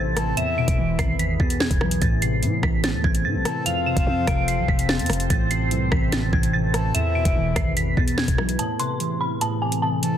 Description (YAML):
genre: hip hop, drill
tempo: 146 BPM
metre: 4/4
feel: half-time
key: A harmonic minor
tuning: A4 = 439 Hz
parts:
  - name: dark detuned synth bell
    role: melody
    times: 0.0-10.2 s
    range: G#5 to F7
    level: -28 LUFS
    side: right 2 dB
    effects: chorus, low-pass filter, ping-pong delay
  - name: warbly lo-fi synth keys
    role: accompaniment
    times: 0.0-10.2 s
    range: E2 to F3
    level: -25 LUFS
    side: equal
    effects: chorus, phaser, low-pass filter
  - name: deep dark ambient pad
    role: sustained chords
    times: 0.0-10.2 s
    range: E3 to C5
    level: -30 LUFS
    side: left 1 dB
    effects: chorus, built-in reverb
  - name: growling 808-style bass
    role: bass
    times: 0.0-8.6 s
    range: E1 to A2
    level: -26 LUFS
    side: equal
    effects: none
  - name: breathy flute-like synth lead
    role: second line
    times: 0.2-10.2 s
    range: E5 to A5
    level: -29 LUFS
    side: left 4 dB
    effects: chorus, ping-pong delay
  - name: drill drum kit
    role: drums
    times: 0.2-10.1 s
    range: hi-hat, kick drum, rim click, snare drum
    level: -23 LUFS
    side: equal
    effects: overdrive
room: digital ambience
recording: dense, heavily limited modern master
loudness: -19 LUFS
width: side -10 dB against mid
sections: 0.0-8.6 A section; 8.6-10.2 B section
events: none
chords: 0.4 E; 2.0 Am; 3.7 F; 5.3 Am; 6.9 E; 8.6 Am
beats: | 0.37 0.78 1.19 1.60 | 2.02 2.43 2.84 3.25 | 3.66 4.07 4.48 4.89 | 5.30 5.71 6.12 6.54 | 6.95 7.36 7.77 8.18 | 8.59 9.00 9.41 9.82